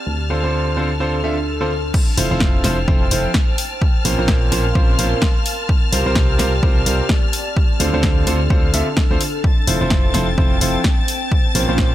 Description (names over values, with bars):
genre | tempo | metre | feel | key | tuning
piano house | 128 BPM | 4/4 | swing 58% on 16ths | F major | A4 = 440 Hz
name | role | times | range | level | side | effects
bright symphonic string section | sustained chords | 0.0-11.9 s | A5 to A6 | -27 LUFS | left 3 dB | sidechain pumping
warbly tape-like pad | texture | 0.0-11.9 s | C4 to C6 | -28 LUFS | equal | chorus, built-in reverb, sidechain pumping
solid FM bass | bass | 0.1-11.9 s | F1 to D2 | -20 LUFS | equal | sidechain pumping
clear concert grand piano | riff | 0.3-11.9 s | Bb2 to E5 | -22 LUFS | right 1 dB | sidechain pumping, dub echo
electronic kick drum | drums | 1.9-11.9 s | none | -17 LUFS | equal | small room ambience
house drum kit | drums | 1.9-11.9 s | crash cymbal, hi-hat, snare drum | -22 LUFS | left 1 dB | low-pass filter on cymbals, small room ambience, low-pass filter on hats, low-pass filter on snare
room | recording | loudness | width
little or no reverb | none | -15 LUFS | side -13 dB against mid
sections
0.0-1.9 A section; 1.9-11.9 B section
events
drop 1.9-11.9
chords
0.1 Dm7; 1.9 Fmaj7; 3.8 Bbmadd9; 5.5 C7sus4; 7.6 Dm7; 9.4 Fmaj7; 11.3 Bbmadd9